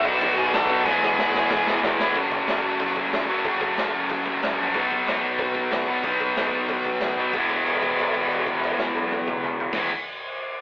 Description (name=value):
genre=punk rock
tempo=185 BPM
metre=4/4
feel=straight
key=E major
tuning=A4 = 445 Hz
part: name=bluesy overdriven lead guitar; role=melody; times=0.0-1.8 s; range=F#4 to A5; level=-23 LUFS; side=equal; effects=distortion
part: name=cranked stack guitar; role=riff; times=0.0-2.2 s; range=B2 to F#4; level=-31 LUFS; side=equal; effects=none
part: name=distorted electric guitar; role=riff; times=0.0-9.9 s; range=F#2 to E4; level=-23 LUFS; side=left 1 dB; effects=overdrive
part: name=sludgy distorted guitar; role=riff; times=0.0-9.9 s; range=E2 to B3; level=-30 LUFS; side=right 1 dB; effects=overdrive
part: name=modern bright picked electric bass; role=bass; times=0.1-9.9 s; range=E1 to B2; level=-36 LUFS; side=equal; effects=none
part: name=raw garage drum kit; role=drums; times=0.1-9.8 s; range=crash cymbal, hi-hat, kick drum, snare drum, toms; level=-27 LUFS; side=equal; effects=none
room=moderate studio reverb, RT60 0.6 s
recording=rough rehearsal-room recording, telephone sound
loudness=-20 LUFS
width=side -24 dB against mid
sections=0.0-2.2 A section; 2.2-7.3 B section; 7.3-9.9 C section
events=drum fill 0.9-2.2; held note 7.3-9.7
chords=0.0 B; 0.9 E; 2.2 F#m; 4.7 B; 7.3 E